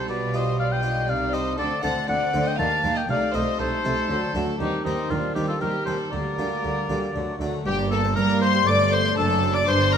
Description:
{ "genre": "classical, baroque-style concerto movement with solo episodes", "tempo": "119 BPM", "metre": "3/4", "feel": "straight", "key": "G minor", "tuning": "A4 = 438 Hz", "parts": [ { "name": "rich chamber violin section", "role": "melody", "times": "0.0-10.0 s", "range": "A3 to D6", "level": "-30 LUFS", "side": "left 7 dB", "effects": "none" }, { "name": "warm oboe", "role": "melody", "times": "0.0-10.0 s", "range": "Eb4 to A5", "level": "-27 LUFS", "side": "left 2 dB", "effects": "none" }, { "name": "rich chamber violin section", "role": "second line", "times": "0.0-10.0 s", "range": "C4 to F#5", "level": "-28 LUFS", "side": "left 1 dB", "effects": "none" }, { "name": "dark chamber viola section", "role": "accompaniment", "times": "0.0-10.0 s", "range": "F#3 to D4", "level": "-31 LUFS", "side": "right 1 dB", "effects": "none" }, { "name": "harpsichord", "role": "accompaniment", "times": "0.0-10.0 s", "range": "F#2 to Eb5", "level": "-31 LUFS", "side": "equal", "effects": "none" }, { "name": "rich chamber double bass section", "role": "bass", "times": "0.0-10.0 s", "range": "F#1 to G2", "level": "-29 LUFS", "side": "right 3 dB", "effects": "none" }, { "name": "warm chamber cello section", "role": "bass", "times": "0.0-10.0 s", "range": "F#2 to G3", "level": "-29 LUFS", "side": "right 3 dB", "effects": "none" } ], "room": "wet recital hall reverb, RT60 1.4 s", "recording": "none", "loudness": "-21 LUFS", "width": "side -8 dB against mid", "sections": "0.0-7.7 A section; 7.7-10.0 B section", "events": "none", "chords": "0.1 G7/B; 1.1 Cm; 1.6 D5; 2.6 Eb; 3.1 Adim/C; 4.1 D; 4.6 Cm/Eb; 6.1 Gm/D; 7.2 D; 7.7 Gm; 8.7 Am7b5/G; 9.2 D7/F#" }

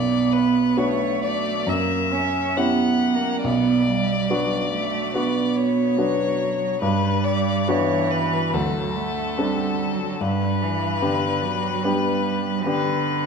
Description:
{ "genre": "classical, slow romantic movement for piano trio", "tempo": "64-74 BPM", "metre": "4/4", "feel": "rubato", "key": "B minor", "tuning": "A4 = 440 Hz", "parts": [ { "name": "rich violin", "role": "melody", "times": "0.0-13.3 s", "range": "A4 to F#5", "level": "-26 LUFS", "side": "left 9 dB", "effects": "none" }, { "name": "rich cello", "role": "second line", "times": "0.0-13.3 s", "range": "D3 to C#4", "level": "-23 LUFS", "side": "right 7 dB", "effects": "none" }, { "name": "clear baby grand piano", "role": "accompaniment", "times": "0.0-13.3 s", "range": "B1 to A4", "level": "-25 LUFS", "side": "left 2 dB", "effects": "none" } ], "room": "wet recital hall reverb, RT60 1.5 s", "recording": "none", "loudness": "-19 LUFS", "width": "side -6 dB against mid", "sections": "0.0-13.3 A section", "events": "none", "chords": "0.0 Bm; 1.7 F#5; 3.4 Bm; 6.8 Gmaj7; 8.5 D5; 10.2 G" }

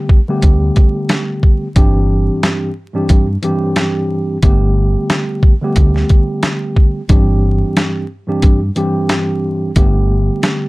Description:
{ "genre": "hip hop, boom-bap hip-hop", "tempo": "90 BPM", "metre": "4/4", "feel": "swing 58% on 16ths", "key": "G major", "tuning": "A4 = 440 Hz", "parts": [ { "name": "mellow tine electric piano", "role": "accompaniment", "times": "0.0-10.7 s", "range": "G2 to G4", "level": "-16 LUFS", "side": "equal", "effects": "medium stereo tremolo, cassette tape, high-pass filter, low-pass filter" }, { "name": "boom bap sampler-style drum kit", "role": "drums", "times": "0.1-10.6 s", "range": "hi-hat, kick drum, snare drum", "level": "-11 LUFS", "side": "equal", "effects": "none" }, { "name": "deep dub fingered electric bass", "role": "bass", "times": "0.4-10.3 s", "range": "G1 to G2", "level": "-14 LUFS", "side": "equal", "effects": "none" } ], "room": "light reverb", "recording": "dark, warm production, vinyl crackle", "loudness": "-11 LUFS", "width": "side -22 dB against mid", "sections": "0.0-10.7 A section", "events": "none", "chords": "0.0 Gadd9; 1.8 Cadd9/G; 4.4 Gadd9; 7.1 Cadd9/G; 9.8 Gadd9" }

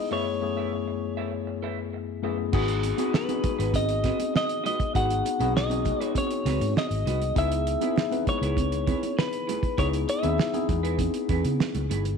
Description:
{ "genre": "lush 1970s-style soul", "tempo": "99 BPM", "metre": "4/4", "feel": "straight", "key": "unclear", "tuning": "A4 = 442 Hz", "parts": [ { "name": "clean electric guitar", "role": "melody", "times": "0.0-10.7 s", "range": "B4 to F#5", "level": "-30 LUFS", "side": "left 1 dB", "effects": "wide subtle chorus, slapback echo" }, { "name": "mellow tine electric piano", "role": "accompaniment", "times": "0.0-12.2 s", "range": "F#2 to B4", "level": "-29 LUFS", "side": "left 12 dB", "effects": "medium stereo tremolo" }, { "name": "electric guitar through a small old amp", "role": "riff", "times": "0.1-12.1 s", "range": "D#4 to E5", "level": "-36 LUFS", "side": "right 12 dB", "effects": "lush chorus" }, { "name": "vintage muted fingered electric bass", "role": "bass", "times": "2.5-12.2 s", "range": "G1 to C#3", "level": "-28 LUFS", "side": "equal", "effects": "transformer saturation" }, { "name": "cloth-damped thuddy drum kit", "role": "drums", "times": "2.5-12.2 s", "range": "crash cymbal, hi-hat, kick drum, snare drum", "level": "-29 LUFS", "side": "right 3 dB", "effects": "none" }, { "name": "congas", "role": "percussion", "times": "2.5-12.0 s", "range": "none", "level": "-33 LUFS", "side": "right 13 dB", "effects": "none" } ], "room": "light reverb, studio reverb", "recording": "1960s-style stereo with parts hard left and right", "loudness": "-24 LUFS", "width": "side -6 dB against mid", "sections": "0.0-2.5 A section; 2.5-12.2 B section", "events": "none", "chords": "0.1 F#m11; 2.5 G#m7; 7.4 C#m7" }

